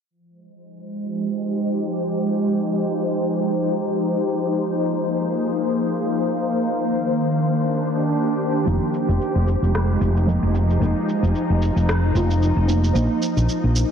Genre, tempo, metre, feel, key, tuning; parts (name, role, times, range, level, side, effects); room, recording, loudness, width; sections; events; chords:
organic downtempo; 112 BPM; 4/4; swing 56% on 16ths; F dorian; A4 = 438 Hz
ethereal airy pad; sustained chords; 0.8-13.9 s; Eb3 to C5; -21 LUFS; equal; ensemble chorus, built-in reverb
deep mellow chord stab; accompaniment; 8.6-13.9 s; F3 to F4; -26 LUFS; right 2 dB; chorus, phaser, vintage 12-bit sampler grit, tape echo
woody fretless electric bass; bass; 8.7-13.8 s; F1 to Bb1; -19 LUFS; equal
electronic shaker and rim click; drums; 8.7-13.9 s; -31 LUFS; equal; soft clipping on snare
moderate lush hall reverb, RT60 2.4 s; dense, heavily limited modern master, low-pass filter; -19 LUFS; side -7 dB against mid
0.1-13.9 A section
filter sweep 0.1-13.9
0.1 Fm9; 4.4 Bb9sus4; 6.5 Cm9; 8.7 Fm9; 13.0 Bb9sus4